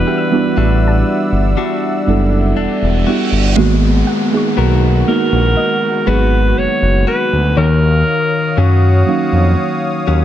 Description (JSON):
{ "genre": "contemporary R&B", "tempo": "60 BPM", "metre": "4/4", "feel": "straight", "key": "G# minor", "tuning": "A4 = 441 Hz", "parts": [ { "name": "breathy alto saxophone", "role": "melody", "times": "0.0-10.2 s", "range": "F#4 to C#5", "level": "-18 LUFS", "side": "right 1 dB", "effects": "none" }, { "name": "muted felt-like synth keys", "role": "accompaniment", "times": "0.0-10.2 s", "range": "D#3 to E#5", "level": "-17 LUFS", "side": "right 4 dB", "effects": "chorus" }, { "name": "warm analog pad", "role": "sustained chords", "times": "0.0-10.2 s", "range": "F#4 to E6", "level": "-23 LUFS", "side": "right 1 dB", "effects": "chorus" }, { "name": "direct-recorded clean electric guitar", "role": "arpeggios", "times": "0.0-10.2 s", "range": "D#3 to A#4", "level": "-20 LUFS", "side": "left 10 dB", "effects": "none" }, { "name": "smooth synth bass", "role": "bass", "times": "0.0-10.2 s", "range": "E1 to F#2", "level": "-13 LUFS", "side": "equal", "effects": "none" }, { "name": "soft round pluck", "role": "texture", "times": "0.0-10.2 s", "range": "G4 to E6", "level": "-29 LUFS", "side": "right 2 dB", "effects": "none" }, { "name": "reverse cymbal and downlifter", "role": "sound effects", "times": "2.5-10.2 s", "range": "none", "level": "-26 LUFS", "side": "right 2 dB", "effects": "none" } ], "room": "little or no reverb", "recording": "none", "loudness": "-11 LUFS", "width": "side -11 dB against mid", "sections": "0.0-3.6 A section; 3.6-10.2 B section", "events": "reverse cymbal 2.5-3.6", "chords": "0.0 Em9; 3.6 G#m9; 7.6 D#m9" }